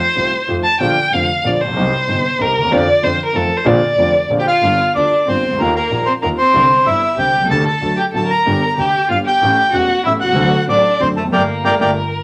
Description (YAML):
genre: tango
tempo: 188 BPM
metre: 3/4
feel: rubato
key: Bb major, G minor from 4.6 s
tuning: A4 = 440 Hz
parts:
  - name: warm violin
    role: second line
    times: 0.0-12.2 s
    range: A3 to A5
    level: -20 LUFS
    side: equal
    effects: none
  - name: warm concert grand piano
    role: accompaniment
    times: 0.2-11.9 s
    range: E1 to A4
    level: -22 LUFS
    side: equal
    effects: none
  - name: clear double bass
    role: bass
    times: 0.2-11.9 s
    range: E1 to F2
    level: -27 LUFS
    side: equal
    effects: none
  - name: bandoneon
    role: melody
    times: 4.4-11.9 s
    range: A4 to Bb5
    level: -17 LUFS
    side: equal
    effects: none
room: wet studio reverb, RT60 0.5 s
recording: none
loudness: -15 LUFS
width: mono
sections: 0.0-4.6 A section; 4.6-12.2 B section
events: violin solo 0.0-4.6; band accent 11.3-12.2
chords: 0.0 F7; 0.8 Bb; 1.8 Cm7; 2.7 Bb/F; 3.3 F7; 3.7 Bbadd9; 4.6 Gm7; 5.6 Ebadd9; 6.5 Cadd9; 7.5 Gm/D; 7.8 D; 8.5 Gm; 9.4 A7; 10.4 D7; 11.3 Gmadd9